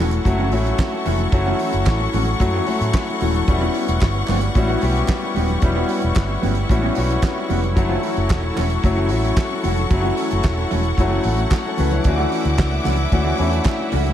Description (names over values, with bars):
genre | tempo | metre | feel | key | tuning
disco | 112 BPM | 4/4 | straight | unclear | A4 = 440 Hz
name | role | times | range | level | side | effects
clear concert grand piano | accompaniment | 0.0-14.1 s | E3 to C#5 | -23 LUFS | left 3 dB | none
mellow electric guitar | accompaniment | 0.0-14.1 s | E3 to F#4 | -26 LUFS | right 1 dB | wide subtle chorus
clear studio string section | sustained chords | 0.0-14.1 s | G3 to D6 | -26 LUFS | left 2 dB | none
vintage muted fingered electric bass | bass | 0.0-14.1 s | D#1 to A2 | -21 LUFS | right 1 dB | none
congas | percussion | 0.0-14.1 s | none | -31 LUFS | left 5 dB | none
damped 70s drum kit | drums | 0.1-14.1 s | handclaps, hi-hat, kick drum, snare drum | -22 LUFS | right 1 dB | none
group handclap | percussion | 0.8-13.8 s | none | -38 LUFS | right 4 dB | none
room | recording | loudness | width
light reverb, small room ambience | none | -17 LUFS | side -10 dB against mid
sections
0.0-14.1 A section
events
none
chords
0.0 F#m7; 3.5 Em69; 7.8 F#m7; 12.1 Dmaj9